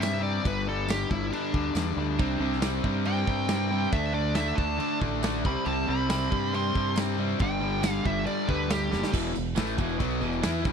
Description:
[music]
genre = classic rock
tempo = 138 BPM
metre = 4/4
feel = straight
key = E minor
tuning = A4 = 442 Hz
[part]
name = dark smooth lead guitar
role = melody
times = 0.0-9.1 s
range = D4 to C6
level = -32 LUFS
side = right 3 dB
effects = overdrive
[part]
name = overdriven semi-hollow guitar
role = riff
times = 0.0-10.7 s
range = E2 to E4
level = -31 LUFS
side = left 14 dB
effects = none
[part]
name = growling fingered electric bass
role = bass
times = 0.0-10.7 s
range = E1 to G2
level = -31 LUFS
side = right 1 dB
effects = overdrive
[part]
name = big rock drum kit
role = drums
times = 0.0-10.7 s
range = crash cymbal, kick drum, snare drum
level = -32 LUFS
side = right 1 dB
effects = none
[part]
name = tambourine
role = percussion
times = 0.0-10.7 s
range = none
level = -46 LUFS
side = right 21 dB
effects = none
[part]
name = overdriven electric guitar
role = riff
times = 2.2-10.7 s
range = E2 to E4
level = -32 LUFS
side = right 16 dB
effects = none
[sound]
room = little or no reverb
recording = dry, close 1970s-style studio recording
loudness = -25 LUFS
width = side -6 dB against mid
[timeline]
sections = 0.0-9.1 A section; 9.1-10.7 B section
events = lead electric guitar solo 0.0-9.1; drum fill 8.9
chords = 0.4 G5; 2.2 C5; 3.9 D5; 5.4 C5; 7.4 G5; 9.1 E5

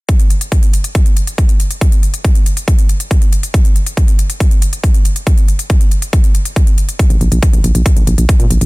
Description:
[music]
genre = uplifting trance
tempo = 139 BPM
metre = 4/4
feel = straight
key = unclear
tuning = A4 = 442 Hz
[part]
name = electronic hi-hat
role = drums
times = 0.1-8.7 s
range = none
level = -22 LUFS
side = left 2 dB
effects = overdrive, sidechain pumping on hats, studio reverb
[part]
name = electronic kick drum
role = drums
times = 0.1-8.4 s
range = none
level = -10 LUFS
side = equal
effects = overdrive, studio reverb
[part]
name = solid FM bass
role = bass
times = 7.1-8.7 s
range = Bb1 to Bb2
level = -12 LUFS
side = equal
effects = sidechain pumping
[sound]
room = little or no reverb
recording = dense, heavily limited modern master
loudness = -10 LUFS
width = side -22 dB against mid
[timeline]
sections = 0.1-8.7 A section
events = none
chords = none

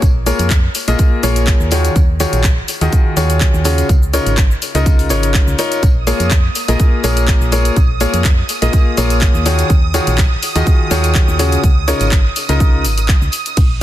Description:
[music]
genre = piano house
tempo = 124 BPM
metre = 4/4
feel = swing 54% on 16ths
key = Bb minor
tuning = A4 = 443 Hz
[part]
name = solid FM bass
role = bass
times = 0.0-13.8 s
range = Ab1 to F2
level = -16 LUFS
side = equal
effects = tube saturation, sidechain pumping
[part]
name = electronic kick drum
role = drums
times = 0.0-13.7 s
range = none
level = -12 LUFS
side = equal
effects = none
[part]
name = house drum kit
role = drums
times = 0.0-13.7 s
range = handclaps, hi-hat, ride cymbal, shaker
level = -21 LUFS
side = left 1 dB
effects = none
[part]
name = tambourine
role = percussion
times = 0.0-13.7 s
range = none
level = -31 LUFS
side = left 2 dB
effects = none
[part]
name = clear concert grand piano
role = riff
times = 0.3-12.8 s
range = Db3 to Eb5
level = -18 LUFS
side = left 2 dB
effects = vintage 12-bit sampler grit, sidechain pumping, ping-pong delay
[part]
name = analog string pad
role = sustained chords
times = 5.8-13.8 s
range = Eb6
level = -24 LUFS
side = right 8 dB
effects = ensemble chorus, vintage 12-bit sampler grit, sidechain pumping
[sound]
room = little or no reverb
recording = dense, heavily limited modern master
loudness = -11 LUFS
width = side -13 dB against mid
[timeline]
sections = 0.0-13.8 A section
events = none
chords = 0.0 Bbm7; 1.7 Ebm11; 3.9 Db69; 5.8 Bbm7; 9.5 Ebm11; 11.6 Db69

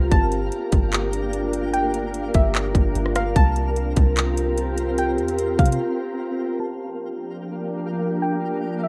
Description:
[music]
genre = hip hop, atmospheric cloud-rap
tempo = 148 BPM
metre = 4/4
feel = half-time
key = G minor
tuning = A4 = 440 Hz
[part]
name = glassy FM pad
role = sustained chords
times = 0.0-8.9 s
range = F3 to Bb4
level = -27 LUFS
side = equal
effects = ensemble chorus, built-in reverb, sidechain pumping, low-pass filter
[part]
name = soft 808-style bass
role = bass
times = 0.0-5.8 s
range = G1 to C3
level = -27 LUFS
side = equal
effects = none
[part]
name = twinkling granular texture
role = texture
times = 0.0-8.9 s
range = Bb3 to F5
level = -37 LUFS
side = equal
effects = built-in reverb
[part]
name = soft round pluck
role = melody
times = 0.1-8.9 s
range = E5 to A5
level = -30 LUFS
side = equal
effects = chorus, low-pass filter, tape echo
[part]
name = trap drum kit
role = drums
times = 0.1-5.8 s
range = handclaps, hi-hat, kick drum, rim click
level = -22 LUFS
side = equal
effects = none
[sound]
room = digital ambience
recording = rough home demo mix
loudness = -22 LUFS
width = mono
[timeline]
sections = 0.0-6.6 A section; 6.6-8.9 B section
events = break 5.8-6.6; filter sweep 6.6-8.9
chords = 0.1 Gm7; 3.4 C7sus4; 6.6 Gm7

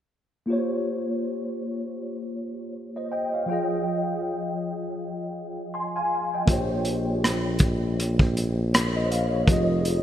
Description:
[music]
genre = R&B, neo-soul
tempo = 80 BPM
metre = 4/4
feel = swing 59% on 16ths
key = Bb dorian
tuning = A4 = 440 Hz
[part]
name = mellow tine electric piano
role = accompaniment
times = 0.5-10.0 s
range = F3 to C6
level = -26 LUFS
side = equal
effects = ensemble chorus
[part]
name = mellow tuba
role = bass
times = 6.5-10.0 s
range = F1 to Bb1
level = -26 LUFS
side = equal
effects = none
[part]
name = crunchy breakbeat drum kit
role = drums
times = 6.5-10.0 s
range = hi-hat, kick drum, rim click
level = -22 LUFS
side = equal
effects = gated reverb
[sound]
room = moderate lush hall reverb, RT60 2.6 s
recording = bright 1980s-style digital production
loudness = -23 LUFS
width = side -11 dB against mid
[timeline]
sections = 0.5-10.0 A section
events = none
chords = 0.5 Bbm69; 3.5 Fm9; 6.5 Bbm69; 9.5 Fm9

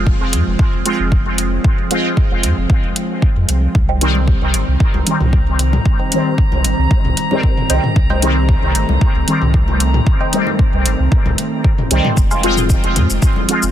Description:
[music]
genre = dub techno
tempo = 114 BPM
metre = 4/4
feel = straight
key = F minor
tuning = A4 = 441 Hz
[part]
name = airy breathy pad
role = sustained chords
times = 0.0-13.7 s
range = Eb3 to C4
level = -23 LUFS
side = right 1 dB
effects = chorus, vintage 12-bit sampler grit, sidechain pumping
[part]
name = warm sub bass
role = bass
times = 0.0-13.7 s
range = F1 to F2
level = -17 LUFS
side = equal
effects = sidechain pumping
[part]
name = electronic kick drum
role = drums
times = 0.1-13.3 s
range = none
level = -14 LUFS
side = equal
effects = none
[part]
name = electronic hi-hat and shaker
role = drums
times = 0.3-13.7 s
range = none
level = -20 LUFS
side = equal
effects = none
[part]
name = resonant sweep polysynth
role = stabs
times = 0.9-13.6 s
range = Eb3 to F4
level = -20 LUFS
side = equal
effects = chorus, phaser, sidechain pumping, dub echo
[part]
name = drifting glass-harmonics texture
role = texture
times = 4.8-12.2 s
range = Bb5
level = -27 LUFS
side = equal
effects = chorus, built-in reverb, sidechain pumping
[part]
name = filtered dub chord stab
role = riff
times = 3.9-12.5 s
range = C5 to C6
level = -27 LUFS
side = right 3 dB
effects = phaser, sidechain pumping, dub echo
[part]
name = electronic congas and toms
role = percussion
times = 4.2-13.5 s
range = none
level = -24 LUFS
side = left 2 dB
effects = sidechain pumping on perc, sidechain pumping on toms, dub echo
[sound]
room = little or no reverb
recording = dense, heavily limited modern master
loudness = -12 LUFS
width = side -11 dB against mid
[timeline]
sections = 0.0-12.2 A section; 12.2-13.7 A section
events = none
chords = 0.0 Fm; 3.8 Cm; 12.2 Fm

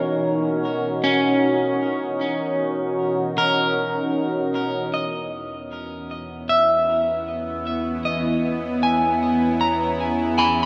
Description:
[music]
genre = ambient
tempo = 77 BPM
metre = 3/4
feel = straight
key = E lydian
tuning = A4 = 440 Hz
[part]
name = evolving wavetable pad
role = sustained chords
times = 0.0-10.7 s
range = E3 to C#5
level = -28 LUFS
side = equal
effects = phaser, built-in reverb
[part]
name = electric guitar at the edge of break-up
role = arpeggios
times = 0.0-10.7 s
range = C#4 to B5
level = -25 LUFS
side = equal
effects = delay
[part]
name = bowed-like drone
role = drone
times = 0.0-10.7 s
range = B2 to E4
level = -29 LUFS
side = equal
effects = built-in reverb
[part]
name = dark symphonic double bass section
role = bass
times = 4.9-10.7 s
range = E2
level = -40 LUFS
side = equal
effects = none
[sound]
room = wet cathedral reverb, RT60 4.9 s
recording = in a vast, echoing space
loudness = -22 LUFS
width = mono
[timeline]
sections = 0.0-4.9 A section; 4.9-10.7 B section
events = fade-in on ambient pad 4.9-10.7; fade-in on double bass section 4.9-10.7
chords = 0.0 D#m7; 4.9 E6

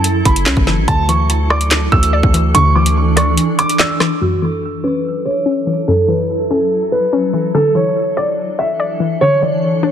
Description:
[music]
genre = hip hop, drill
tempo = 144 BPM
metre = 4/4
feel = half-time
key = F# minor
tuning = A4 = 440 Hz
[part]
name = dark concert grand piano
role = melody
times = 0.0-9.9 s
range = F#4 to E6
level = -16 LUFS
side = right 2 dB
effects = low-pass filter, digital delay
[part]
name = hollow square pluck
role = accompaniment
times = 0.0-9.9 s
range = F#2 to D5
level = -19 LUFS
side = left 4 dB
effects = chorus, low-pass filter
[part]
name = granular cloud pad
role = sustained chords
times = 0.0-9.9 s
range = E3 to A4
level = -21 LUFS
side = right 1 dB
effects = built-in reverb, low-pass filter
[part]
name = distorted 808-style bass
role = bass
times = 0.0-3.4 s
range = F#1 to F#2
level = -15 LUFS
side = equal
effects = distortion
[part]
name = drill drum kit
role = drums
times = 0.0-4.1 s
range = handclaps, hi-hat, kick drum, rim click, snare drum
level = -16 LUFS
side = equal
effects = none
[sound]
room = light reverb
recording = dense, heavily limited modern master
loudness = -12 LUFS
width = side -9 dB against mid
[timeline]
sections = 0.0-4.2 A section; 4.2-9.9 B section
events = break 3.4-4.2; filter sweep 4.2-9.9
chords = 0.0 F#m7; 0.9 Dsus2; 4.2 F#m7; 7.5 Dsus2

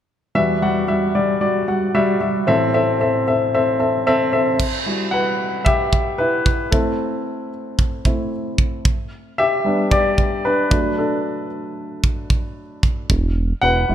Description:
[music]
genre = piano-driven pop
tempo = 113 BPM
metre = 4/4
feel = swing 56% on 16ths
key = unclear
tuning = A4 = 442 Hz
[part]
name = warm baby grand piano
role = accompaniment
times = 0.3-13.9 s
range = A1 to F#5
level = -18 LUFS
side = left 1 dB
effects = none
[part]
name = modern studio drum kit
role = drums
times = 4.6-13.2 s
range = crash cymbal, kick drum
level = -19 LUFS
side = right 1 dB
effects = none
[part]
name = chorused synth bass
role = bass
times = 13.1-13.9 s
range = E1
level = -19 LUFS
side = right 1 dB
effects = none
[sound]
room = moderate plate reverb, RT60 2.6 s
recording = bright 1980s-style digital production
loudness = -17 LUFS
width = side -10 dB against mid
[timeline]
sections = 0.4-4.6 A section; 4.6-13.9 B section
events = grand piano solo 4.6-13.9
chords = 0.4 Emadd9; 2.5 Am; 4.6 Emadd9; 6.7 Am; 8.9 G; 10.7 D/F#; 13.1 Esus2

